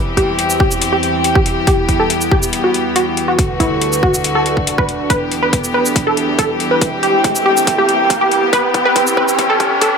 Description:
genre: heavy wobble dubstep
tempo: 140 BPM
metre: 4/4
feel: half-time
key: E minor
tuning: A4 = 439 Hz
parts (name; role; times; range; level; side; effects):
- wide unison pluck; melody; 0.0-10.0 s; E4 to B4; -17 LUFS; right 1 dB; dub echo
- bright chamber string section; sustained chords; 0.0-10.0 s; D2 to G4; -19 LUFS; left 2 dB; sidechain pumping
- deep dark ambient pad; texture; 0.0-10.0 s; D4 to G5; -19 LUFS; right 1 dB; chorus, built-in reverb, sidechain pumping
- electronic hi-hat and shaker; drums; 0.2-9.9 s; none; -20 LUFS; left 3 dB; none
- electronic kick drum; drums; 0.2-9.9 s; none; -17 LUFS; equal; none
- riser; sound effects; 6.2-10.0 s; none; -21 LUFS; equal; none
room: moderate digital room reverb, RT60 1.3 s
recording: high-pass filter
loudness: -12 LUFS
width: side -6 dB against mid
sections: 0.0-10.0 A section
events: build-up 0.0-10.0; filter sweep on synth pluck 0.0-10.0; drum fill 5.1-10.0; riser 6.2-10.0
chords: 0.0 C/E; 1.7 Em; 3.4 D; 5.1 Em; 6.8 C/E; 8.5 Em

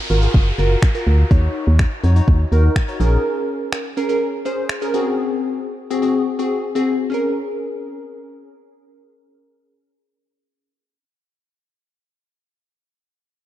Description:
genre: dance-pop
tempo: 124 BPM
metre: 4/4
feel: straight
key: Bb minor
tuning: A4 = 441 Hz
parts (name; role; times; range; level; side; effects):
- downlifter; sound effects; 0.0-3.2 s; none; -31 LUFS; equal; none
- glassy wavetable pluck; accompaniment; 0.1-11.0 s; C4 to Db5; -21 LUFS; left 1 dB; chorus, sidechain pumping
- organ-like FM bass; bass; 0.1-3.2 s; Gb1 to F2; -14 LUFS; equal; sidechain pumping
- smooth R&B drum kit; drums; 0.3-4.8 s; finger snaps, kick drum; -18 LUFS; equal; none
room: light reverb, digital ambience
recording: dark, warm production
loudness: -16 LUFS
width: side -12 dB against mid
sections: 0.0-7.1 A section; 7.1-11.0 B section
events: none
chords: 0.0 Gbmaj7; 1.3 Ebm7; 3.0 Bbm7; 4.9 Ab7; 7.1 Bbm7

